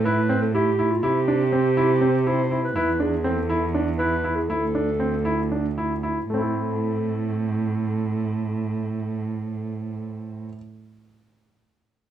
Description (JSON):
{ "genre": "contemporary instrumental, contemporary", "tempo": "228-244 BPM (eighths)", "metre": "7/8", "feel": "straight", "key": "A minor", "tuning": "A4 = 440 Hz", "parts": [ { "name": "mellow clarinet", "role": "melody", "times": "0.0-5.8 s", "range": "F4 to C5", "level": "-24 LUFS", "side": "right 1 dB", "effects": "none" }, { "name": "warm cello", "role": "bass", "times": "0.0-10.4 s", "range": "D2 to C3", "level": "-25 LUFS", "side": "right 3 dB", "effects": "none" }, { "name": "bright concert grand piano", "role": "arpeggios", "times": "0.1-10.6 s", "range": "A3 to A4", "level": "-26 LUFS", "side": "equal", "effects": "none" } ], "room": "moderate studio ambience, RT60 0.5 s", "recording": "dark, warm production", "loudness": "-21 LUFS", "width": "side -10 dB against mid", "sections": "0.0-6.3 A section; 6.3-10.0 B section", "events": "slowing down 2.8-6.3", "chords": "0.0 Am; 1.0 C; 2.8 E7; 4.5 D5; 6.3 Am" }